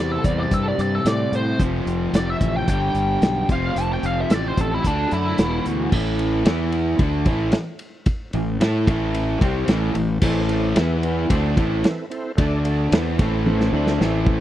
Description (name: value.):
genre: blues rock power trio and southern rock.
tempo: 111 BPM.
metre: 4/4.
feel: straight.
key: A minor.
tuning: A4 = 439 Hz.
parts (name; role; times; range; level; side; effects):
biting lead guitar; melody; 0.0-5.6 s; D4 to A5; -25 LUFS; right 1 dB; wah, overdrive.
overdriven electric guitar; riff; 0.0-14.4 s; E2 to A4; -23 LUFS; equal; none.
fuzz fingered electric bass; bass; 0.0-14.4 s; E1 to A2; -23 LUFS; equal; overdrive.
vintage drum kit; drums; 0.2-14.4 s; crash cymbal, hi-hat, kick drum, ride cymbal, snare drum, toms; -20 LUFS; equal; none.
overdriven tonewheel organ; sustained chords; 10.2-14.4 s; A3 to G5; -29 LUFS; right 3 dB; slow rotary speaker, chorus vibrato.
room: small room ambience.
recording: dry, close 1970s-style studio recording.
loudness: -18 LUFS.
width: side -13 dB against mid.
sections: 0.0-5.9 A section; 5.9-14.4 B section.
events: drum fill 13.5-14.4.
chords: 0.0 C; 1.6 F; 2.7 G; 3.5 F; 4.8 D; 5.4 E5; 5.9 A5; 6.5 E5; 7.0 Am; 10.8 E5; 11.3 Am; 12.4 D5; 12.9 Am.